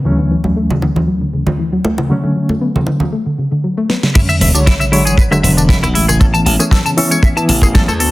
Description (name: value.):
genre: nu-disco, nu disco.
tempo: 117 BPM.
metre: 4/4.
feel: straight.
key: E mixolydian.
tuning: A4 = 442 Hz.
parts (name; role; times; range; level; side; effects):
reed electric piano; accompaniment; 0.0-7.9 s; D2 to C#5; -17 LUFS; equal; fast tremolo, sidechain pumping.
soft round pluck; arpeggios; 0.0-8.1 s; C#3 to B3; -18 LUFS; left 2 dB; chorus, sidechain pumping, tape echo.
congas and bongos; percussion; 0.4-3.1 s; none; -19 LUFS; right 2 dB; none.
pop drum kit; drums; 3.9-8.1 s; crash cymbal, hi-hat, rim click, snare drum, tambourine; -17 LUFS; equal; none.
semi-hollow electric guitar; riff; 4.2-8.1 s; D4 to A5; -18 LUFS; left 2 dB; lush chorus, slapback echo.
kick drum; drums; 4.2-7.9 s; none; -11 LUFS; equal; none.
sub drop; sound effects; 4.2-6.2 s; none; -19 LUFS; equal; none.
glassy slap bass; bass; 4.4-8.1 s; E1 to E2; -14 LUFS; equal; none.
room: small room ambience.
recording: dense, heavily limited modern master.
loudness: -11 LUFS.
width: side -18 dB against mid.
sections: 0.0-4.2 A section; 4.2-8.1 B section.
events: filter sweep on synth arpeggio sound 0.0-4.2; drum fill 3.9; drop 4.2-8.1; impact 4.2-6.2.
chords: 0.1 Dmaj9; 2.1 Bm9 (rootless); 4.2 E13; 6.2 Amaj9.